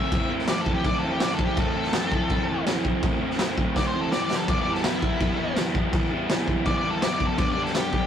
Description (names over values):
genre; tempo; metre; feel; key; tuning
garage rock duo or trio; 165 BPM; 4/4; straight; A minor; A4 = 441 Hz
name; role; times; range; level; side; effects
octave-fuzz lead guitar; melody; 0.0-8.1 s; E4 to E5; -28 LUFS; left 1 dB; distortion
crunchy overdriven guitar; riff; 0.0-8.1 s; G2 to E4; -26 LUFS; equal; none
raw garage drum kit; drums; 0.1-8.0 s; crash cymbal, kick drum, snare drum; -25 LUFS; equal; none
room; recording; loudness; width
moderate studio reverb, RT60 0.6 s; rough rehearsal-room recording, tube saturation; -22 LUFS; side -9 dB against mid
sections
0.0-8.1 A section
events
drum fill 3.8-4.5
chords
0.0 Am; 4.3 Em; 7.4 G